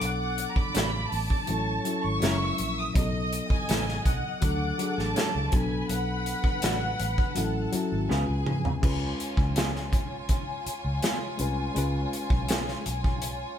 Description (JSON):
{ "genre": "lush 1970s-style soul", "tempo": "82 BPM", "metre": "4/4", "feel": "straight", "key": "unclear", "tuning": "A4 = 440 Hz", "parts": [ { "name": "dark studio violin section", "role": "melody", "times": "0.0-8.1 s", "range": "D#5 to D#6", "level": "-32 LUFS", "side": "right 1 dB", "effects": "none" }, { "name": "rich studio string section", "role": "second line", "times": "0.0-13.6 s", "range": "E#4 to E6", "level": "-36 LUFS", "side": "left 1 dB", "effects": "none" }, { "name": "reed electric piano", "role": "accompaniment", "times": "0.0-13.6 s", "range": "F#3 to B4", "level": "-32 LUFS", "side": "left 3 dB", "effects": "none" }, { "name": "vintage muted fingered electric bass", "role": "bass", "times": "0.0-13.4 s", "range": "F#1 to C#3", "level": "-31 LUFS", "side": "equal", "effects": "none" }, { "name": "modern studio drum kit", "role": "drums", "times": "0.0-13.4 s", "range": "crash cymbal, hi-hat, kick drum, snare drum, toms", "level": "-28 LUFS", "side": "equal", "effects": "none" }, { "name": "electric guitar through a small old amp", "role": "riff", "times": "0.7-12.6 s", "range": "B3 to A#4", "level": "-35 LUFS", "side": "right 4 dB", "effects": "none" } ], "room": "moderate stone room reverb, RT60 1.2 s", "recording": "band playing live in one room", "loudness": "-25 LUFS", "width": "side -9 dB against mid", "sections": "0.0-8.8 A section; 8.8-13.6 B section", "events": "drum fill 8.1-8.8", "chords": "0.0 Bm7; 1.5 F#m7/A; 2.2 F#7; 3.0 B7; 4.4 Dmaj7; 5.5 Bm7; 7.4 F#m7/A; 8.1 C#7" }